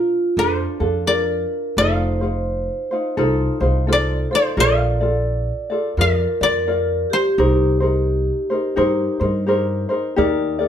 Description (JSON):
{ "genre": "Hawaiian", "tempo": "86 BPM", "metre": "4/4", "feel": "swing 62% on 8ths", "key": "Bb major", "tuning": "A4 = 440 Hz", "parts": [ { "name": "koto", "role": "melody", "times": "0.0-9.2 s", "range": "Bb4 to F5", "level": "-20 LUFS", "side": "left 2 dB", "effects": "none" }, { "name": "vibraphone with medium mallets", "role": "second line", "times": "0.0-9.2 s", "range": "F4 to D5", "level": "-22 LUFS", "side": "right 1 dB", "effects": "none" }, { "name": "ukulele", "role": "accompaniment", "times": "0.0-10.7 s", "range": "D4 to D5", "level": "-21 LUFS", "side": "left 1 dB", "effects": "none" }, { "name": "upright bass", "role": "bass", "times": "0.4-10.7 s", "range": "F1 to G2", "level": "-22 LUFS", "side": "equal", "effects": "none" } ], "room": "moderate studio reverb, RT60 0.7 s", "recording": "band playing live in one room", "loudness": "-17 LUFS", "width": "side -9 dB against mid", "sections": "0.0-10.7 A section", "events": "none", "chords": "0.0 Bbmaj7; 1.8 F7; 4.6 Bbmaj7; 7.4 Cm7; 10.2 Ebmaj7" }